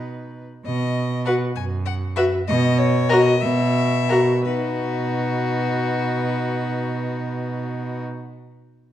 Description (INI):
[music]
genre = quick classical-period movement for string quartet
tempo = 56-66 BPM (dotted quarters)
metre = 6/8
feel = rubato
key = B major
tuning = A4 = 441 Hz
[part]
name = rich violin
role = second line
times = 0.0-8.0 s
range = F#4 to B4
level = -28 LUFS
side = left 4 dB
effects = none
[part]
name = warm viola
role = accompaniment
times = 0.0-8.0 s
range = D#4 to F#4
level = -24 LUFS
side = equal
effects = none
[part]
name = rich cello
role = bass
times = 0.0-8.0 s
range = F#2 to B2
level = -23 LUFS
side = right 2 dB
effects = none
[part]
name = rich violin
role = melody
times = 0.7-8.0 s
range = B4 to G#5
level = -27 LUFS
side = left 8 dB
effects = none
[sound]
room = wet recital hall reverb, RT60 1.4 s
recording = dark, warm production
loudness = -19 LUFS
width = side -12 dB against mid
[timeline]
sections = 0.7-4.5 A section; 4.5-8.5 B section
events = slowing down 0.0-4.5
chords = 0.0 B; 2.5 F#7(no3)/B; 4.5 B